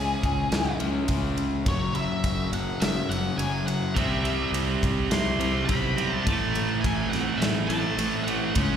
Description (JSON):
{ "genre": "quiet-loud alternative rock", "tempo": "104 BPM", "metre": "4/4", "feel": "straight", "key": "unclear", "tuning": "A4 = 440 Hz", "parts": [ { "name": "octave-fuzz lead guitar", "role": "melody", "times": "0.0-8.8 s", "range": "G#4 to C6", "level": "-31 LUFS", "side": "left 1 dB", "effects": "distortion, plate reverb, slapback echo, digital delay" }, { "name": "electric guitar through a small old amp", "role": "arpeggios", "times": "0.0-8.8 s", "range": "F#2 to E4", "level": "-32 LUFS", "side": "right 3 dB", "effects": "lush chorus, plate reverb" }, { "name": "overdriven semi-hollow guitar", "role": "riff", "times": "0.0-8.8 s", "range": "F#2 to C#4", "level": "-31 LUFS", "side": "left 10 dB", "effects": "slapback echo" }, { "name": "fuzz fingered electric bass", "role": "bass", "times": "0.0-8.8 s", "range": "F#1 to C#2", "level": "-31 LUFS", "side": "equal", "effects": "overdrive" }, { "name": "big rock drum kit", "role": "drums", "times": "0.2-8.7 s", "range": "kick drum, ride cymbal, snare drum", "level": "-29 LUFS", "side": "equal", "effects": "none" }, { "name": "scooped high-gain guitar", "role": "riff", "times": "3.9-8.8 s", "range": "A2 to C#4", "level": "-29 LUFS", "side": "right 8 dB", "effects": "distortion" } ], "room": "light reverb", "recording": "live gig heard through the venue's PA, recital hall reverb", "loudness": "-23 LUFS", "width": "side -8 dB against mid", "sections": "0.0-8.8 A section", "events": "half time 0.0-8.8; lead electric guitar solo 0.0-8.8", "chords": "0.0 C#m; 1.7 F#; 4.0 C; 6.3 Am" }